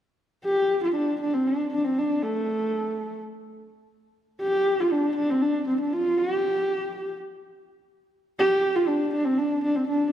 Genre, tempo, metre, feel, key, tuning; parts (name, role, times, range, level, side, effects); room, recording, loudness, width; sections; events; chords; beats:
mongolian traditional; 121 BPM; 4/4; straight; D yu mode; A4 = 440 Hz
dark horsehead fiddle; melody; 0.4-10.1 s; A3 to G4; -22 LUFS; equal
moderate concert hall reverb, RT60 2.0 s; lossy compression artefacts; -22 LUFS; side -10 dB against mid
0.2-10.1 A section
| 0.19 0.69 1.18 1.68 | 2.18 2.67 3.17 3.67 | 4.17 4.66 5.16 5.66 | 6.16 6.65 7.15 7.65 | 8.14 8.64 9.14 9.64